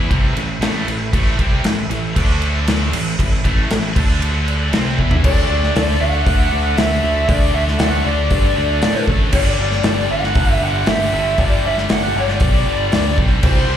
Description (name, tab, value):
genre	hard rock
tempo	117 BPM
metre	4/4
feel	straight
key	unclear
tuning	A4 = 438 Hz
part	overdriven tonewheel organ	sustained chords	0.0-13.8 s	G3 to E5	-32 LUFS	left 1 dB	lush chorus
part	scooped high-gain guitar	riff	0.0-13.8 s	G2 to E4	-26 LUFS	left 11 dB	distortion, slapback echo
part	scooped high-gain guitar	riff	0.0-13.8 s	G2 to E4	-27 LUFS	right 1 dB	distortion
part	tight distorted guitar	riff	0.0-13.8 s	G2 to E4	-27 LUFS	right 11 dB	distortion, slapback echo
part	fingered electric bass	bass	0.0-13.8 s	G1 to A2	-20 LUFS	equal	none
part	big rock drum kit	drums	0.1-13.6 s	crash cymbal, hi-hat, kick drum, snare drum, toms	-18 LUFS	equal	none
part	bluesy overdriven lead guitar	melody	5.3-13.8 s	C5 to F#5	-20 LUFS	left 1 dB	distortion, slapback echo, tape echo
room	small room reverb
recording	live gig heard through the venue's PA, club reverb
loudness	-14 LUFS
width	side -10 dB against mid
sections	0.0-5.2 A section; 5.2-13.8 B section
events	drum fill 5.0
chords	0.0 A5; 2.2 D5; 2.9 A5; 4.0 D5; 4.7 A5; 5.2 D; 9.3 G5